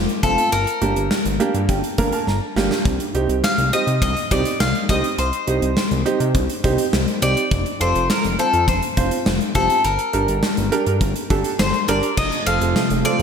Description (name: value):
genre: synth-pop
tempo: 103 BPM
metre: 4/4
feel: straight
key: C dorian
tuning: A4 = 439 Hz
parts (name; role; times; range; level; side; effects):
- fat analog bass; bass; 0.0-13.2 s; F1 to C3; -23 LUFS; equal; none
- gated 80s drum kit; drums; 0.1-13.2 s; crash cymbal, hi-hat, kick drum, snare drum; -22 LUFS; left 1 dB; gated reverb
- bowl-back mandolin; melody; 0.2-13.2 s; A4 to F5; -21 LUFS; left 3 dB; ping-pong delay
- clear concert grand piano; accompaniment; 0.2-13.2 s; A3 to Bb5; -23 LUFS; right 4 dB; none
- string machine, violas; sustained chords; 12.2-13.2 s; C3 to A3; -23 LUFS; right 1 dB; ensemble chorus
room: wet lush hall reverb, RT60 1.9 s, small room reverb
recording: bright 1980s-style digital production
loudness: -17 LUFS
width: side -7 dB against mid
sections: 0.0-12.2 A section; 12.2-13.2 B section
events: grand piano fill 1.1-2.9; drum fill 2.3-2.9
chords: 0.0 F; 0.5 Gm; 2.9 Cm; 7.5 F; 9.8 Gm; 12.2 F